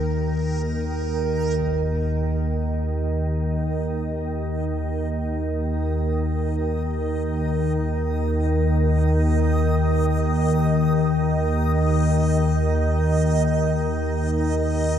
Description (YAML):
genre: dark ambient drone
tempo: free time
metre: none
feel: none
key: unclear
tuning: A4 = 441 Hz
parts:
  - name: organ-like drone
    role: drone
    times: 0.0-15.0 s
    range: Eb2 to Eb3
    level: -20 LUFS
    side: equal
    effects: ensemble chorus, built-in reverb
  - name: backwards swelling texture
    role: texture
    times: 0.0-15.0 s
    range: Bb4 to Eb5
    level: -31 LUFS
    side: right 4 dB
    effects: built-in reverb
  - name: impact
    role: percussion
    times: 1.7-1.8 s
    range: none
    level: barely audible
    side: none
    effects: none
room: wet cathedral reverb, RT60 7.3 s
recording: in a vast, echoing space, cassette tape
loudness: -20 LUFS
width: side -9 dB against mid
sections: 0.0-1.6 A section; 1.6-15.0 B section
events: fade-in on synth texture 1.6-15.0; filter sweep on synth drone 1.6-15.0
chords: 0.0 Eb5; 1.6 N.C.